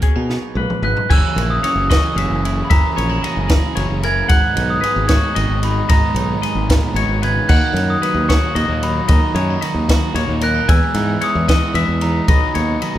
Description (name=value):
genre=math rock and midwest emo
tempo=75 BPM (dotted quarters)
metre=6/8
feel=straight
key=unclear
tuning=A4 = 440 Hz
part: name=twelve-string electric guitar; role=accompaniment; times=0.0-13.0 s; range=F#2 to A#4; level=-27 LUFS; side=right 6 dB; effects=none
part: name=clean electric guitar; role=arpeggios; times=0.0-13.0 s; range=G#4 to G#5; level=-24 LUFS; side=left 8 dB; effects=none
part: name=compact cocktail drum kit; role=drums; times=0.0-12.9 s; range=crash cymbal, hi-hat, kick drum, ride cymbal, snare drum, toms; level=-17 LUFS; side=equal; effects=none
part: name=modern bright fingered electric bass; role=bass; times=0.2-13.0 s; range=F#1 to B2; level=-20 LUFS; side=equal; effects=none
part: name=glockenspiel with soft plastic mallets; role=melody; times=0.8-13.0 s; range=A#5 to G#6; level=-21 LUFS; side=right 1 dB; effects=none
part: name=crunchy overdriven guitar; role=riff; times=1.1-13.0 s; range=C#3 to E4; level=-24 LUFS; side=right 1 dB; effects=none
room=light reverb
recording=none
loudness=-14 LUFS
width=side -12 dB against mid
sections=0.0-1.1 A section; 1.1-13.0 B section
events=drum fill 0.3-1.1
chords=0.0 Bmaj7; 1.1 F#9; 4.3 G#m9; 7.5 D#m7; 10.7 Emaj13; 12.3 Badd9